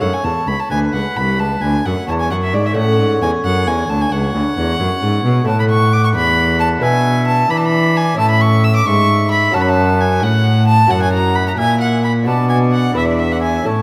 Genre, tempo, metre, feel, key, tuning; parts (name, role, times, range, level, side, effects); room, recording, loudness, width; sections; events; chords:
classical, baroque-style sonata movement with continuo; 88 BPM (dotted quarters); 12/8; straight; F# minor, A major from 5.5 s; A4 = 440 Hz
warm oboe; melody; 0.0-13.8 s; B4 to F#5; -26 LUFS; equal
rich violin; second line; 0.0-13.8 s; D5 to E6; -20 LUFS; equal
lute; accompaniment; 0.0-13.8 s; D2 to C#5; -25 LUFS; equal
rich cello; bass; 0.0-13.8 s; B#1 to E3; -18 LUFS; equal
moderate concert hall reverb, RT60 2.3 s; -15 LUFS; mono
0.0-13.8 A section
0.0 F#m; 5.5 A; 6.8 E7/B; 8.2 A; 9.5 F#m; 10.9 F#7; 12.3 Bm; 13.0 E5